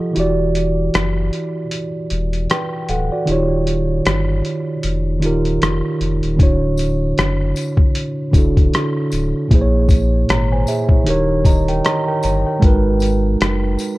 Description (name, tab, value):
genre	lo-fi hip hop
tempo	77 BPM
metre	4/4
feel	swing 58% on 16ths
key	unclear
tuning	A4 = 436 Hz
part	mellow tine electric piano	accompaniment	0.0-14.0 s	A#2 to A#5	-18 LUFS	right 1 dB	cassette tape, low-pass filter
part	warm sub bass	bass	0.2-13.8 s	D1 to A#1	-20 LUFS	equal	none
part	lo-fi sampler-style drum kit	drums	0.2-14.0 s	hi-hat, kick drum, rim click	-17 LUFS	equal	overdrive
part	tambourine	percussion	6.8-14.0 s	none	-37 LUFS	left 8 dB	none
room	light reverb, digital ambience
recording	dark, warm production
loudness	-15 LUFS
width	side -18 dB against mid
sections	0.0-14.0 A section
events	break 0.0-6.4; tine electric piano fill 11.1-12.6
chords	0.2 Em7; 3.3 D#9; 6.4 Dmaj7; 9.5 A#m7b5; 11.1 D#7; 12.6 G#m7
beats	| 0.15 0.93 1.71 2.49 | 3.27 4.05 4.83 5.61 | 6.39 7.17 7.95 8.72 | 9.50 10.28 11.06 11.84 | 12.62 13.40